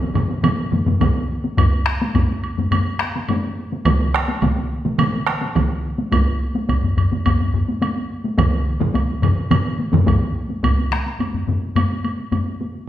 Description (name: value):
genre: japanese traditional, taiko drum ensemble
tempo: 106 BPM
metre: 4/4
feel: straight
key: none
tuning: none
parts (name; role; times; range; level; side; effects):
- taiko ensemble; percussion; 0.1-12.5 s; none; -21 LUFS; left 2 dB; none
- taiko ensemble; percussion; 0.2-10.2 s; none; -21 LUFS; right 3 dB; none
- woodblock; percussion; 0.2-12.5 s; none; -29 LUFS; right 2 dB; none
- taiko ensemble; percussion; 0.3-12.8 s; none; -23 LUFS; left 1 dB; none
- solo taiko drums; percussion; 1.0-10.8 s; none; -22 LUFS; right 1 dB; none
room: wet recital hall reverb, RT60 1.3 s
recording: recorded in a church or concert hall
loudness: -17 LUFS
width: side -12 dB against mid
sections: 0.0-10.6 A section; 10.6-12.9 B section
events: none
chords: none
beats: 0.44 1.01 | 1.58 2.15 2.72 3.29 | 3.86 4.43 4.99 5.56 | 6.13 6.69 7.26 7.82 | 8.39 8.95 9.51 10.08 | 10.64 11.20 11.76 12.32